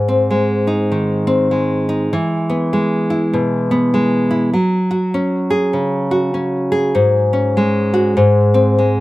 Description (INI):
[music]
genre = folk, solo fingerstyle acoustic guitar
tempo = 99 BPM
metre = 4/4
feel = swing 60% on 8ths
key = unclear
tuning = A4 = 440 Hz
[part]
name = nylon-string guitar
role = solo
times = 0.0-9.0 s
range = G#2 to G#4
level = -14 LUFS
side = equal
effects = none
[sound]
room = light reverb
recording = recorded outdoors, with no room sound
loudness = -14 LUFS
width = side -17 dB against mid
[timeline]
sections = 0.0-9.0 A section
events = none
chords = 0.0 G#; 2.1 E; 4.5 F#sus2; 7.0 G#7sus4; 8.2 G#